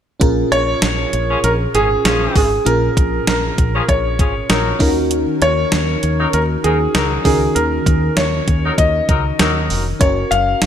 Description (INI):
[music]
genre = 1980s-style pop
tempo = 98 BPM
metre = 4/4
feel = swing 55% on 16ths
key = Bb minor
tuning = A4 = 440 Hz
[part]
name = FM electric piano with soft pad layer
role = accompaniment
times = 0.2-10.7 s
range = Bb2 to Bb4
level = -21 LUFS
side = equal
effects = chorus
[part]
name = fingered electric bass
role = bass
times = 0.2-10.7 s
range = F1 to Eb2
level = -20 LUFS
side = equal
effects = none
[part]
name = clean 12-bit digital drum machine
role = drums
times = 0.2-10.7 s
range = hi-hat, kick drum, snare drum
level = -17 LUFS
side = equal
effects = gated reverb
[part]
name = warm concert grand piano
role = melody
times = 0.5-10.7 s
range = Ab4 to F5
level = -19 LUFS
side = equal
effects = tape echo
[part]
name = clear horn section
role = stabs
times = 1.3-9.8 s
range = F3 to Bb4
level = -22 LUFS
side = left 4 dB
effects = none
[sound]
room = light reverb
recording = none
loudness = -13 LUFS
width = side -9 dB against mid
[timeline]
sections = 0.2-10.7 A section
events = none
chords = 0.2 Bbm7; 4.8 Ebm7; 10.0 Gbmaj7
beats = | 0.21 0.82 1.44 2.05 | 2.66 3.27 3.88 4.50 | 5.11 5.72 6.33 6.95 | 7.56 8.17 8.78 9.39 | 10.01 10.62